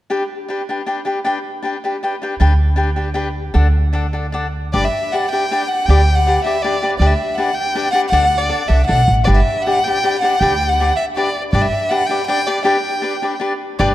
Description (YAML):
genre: mexican folk, mariachi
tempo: 158 BPM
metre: 3/4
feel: rubato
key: G major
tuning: A4 = 440 Hz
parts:
  - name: cavaquinho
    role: accompaniment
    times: 0.1-13.9 s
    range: D4 to G5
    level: -19 LUFS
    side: left 2 dB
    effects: none
  - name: upright bass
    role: bass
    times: 2.4-11.7, 13.8-13.9 s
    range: G1 to D2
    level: -15 LUFS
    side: right 1 dB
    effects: none
  - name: clear violin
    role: melody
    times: 4.7-13.9 s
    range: D5 to G5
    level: -18 LUFS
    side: equal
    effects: none
room: moderate concert hall reverb, RT60 2.1 s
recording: dark, warm production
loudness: -14 LUFS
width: side -14 dB against mid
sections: 0.1-4.7 A section; 4.7-13.8 B section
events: break 12.6-13.8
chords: 0.1 G/D; 3.6 D; 4.7 G; 7.0 G/D; 8.1 D; 9.3 G